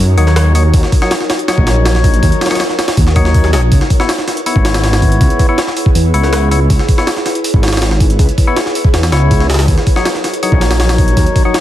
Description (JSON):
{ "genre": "drum and bass, jungle", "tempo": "161 BPM", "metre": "4/4", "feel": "straight", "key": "C# dorian", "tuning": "A4 = 440 Hz", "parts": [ { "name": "ethereal airy pad", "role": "sustained chords", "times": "0.0-11.6 s", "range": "D#4 to C#5", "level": "-20 LUFS", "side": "right 1 dB", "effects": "ensemble chorus, built-in reverb, vintage 12-bit sampler grit" }, { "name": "detuned saw bass", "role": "bass", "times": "0.0-11.3 s", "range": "G#1 to F#2", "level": "-12 LUFS", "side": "equal", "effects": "none" }, { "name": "percussive tonewheel organ", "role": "stabs", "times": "0.2-11.6 s", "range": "F#3 to C#5", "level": "-18 LUFS", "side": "left 4 dB", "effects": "overdrive, vintage 12-bit sampler grit, dub echo" }, { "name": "jungle sampler-style drum kit", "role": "drums", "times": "0.2-11.6 s", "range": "hi-hat, kick drum, snare drum", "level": "-12 LUFS", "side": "equal", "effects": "overdrive" } ], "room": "light reverb", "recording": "dense, heavily limited modern master, vinyl crackle", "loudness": "-9 LUFS", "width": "side -13 dB against mid", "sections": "0.0-11.6 A section", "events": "none", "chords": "0.0 D#m7; 3.7 C#m7; 9.7 D#m7", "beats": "0.36 | 0.74 1.11 1.48 1.85 | 2.23 2.60 2.97 3.35 | 3.72 4.09 4.46 4.84 | 5.21 5.58 5.96 6.33 | 6.70 7.07 7.45 7.82 | 8.19 8.56 8.94 9.31 | 9.68 10.05 10.43 10.80 | 11.17 11.54" }